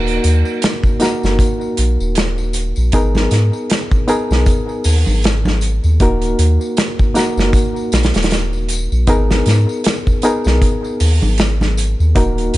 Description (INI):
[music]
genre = trip hop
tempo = 78 BPM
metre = 4/4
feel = swing 57% on 16ths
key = unclear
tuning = A4 = 443 Hz
[part]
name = reed electric piano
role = accompaniment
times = 0.0-12.6 s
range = Bb3 to Bb4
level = -19 LUFS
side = equal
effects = tremolo, tape echo
[part]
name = soft dub sub bass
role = bass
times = 0.0-12.6 s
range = Eb1 to Ab2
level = -15 LUFS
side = equal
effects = none
[part]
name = loose indie drum kit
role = drums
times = 0.1-12.6 s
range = hi-hat, kick drum, snare drum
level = -17 LUFS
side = equal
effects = none
[part]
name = tambourine and congas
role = percussion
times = 0.1-12.6 s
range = none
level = -28 LUFS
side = left 1 dB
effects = none
[sound]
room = little or no reverb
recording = nothing above 10.6 kHz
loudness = -13 LUFS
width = side -16 dB against mid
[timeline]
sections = 0.0-12.6 A section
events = none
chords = 0.0 Ebm; 2.9 Abmadd9; 6.0 Ebm; 9.1 Abmadd9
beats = 0.62 1.39 2.16 | 2.93 3.70 4.47 5.24 | 6.01 6.78 7.54 8.31 | 9.08 9.85 10.62 11.39 | 12.16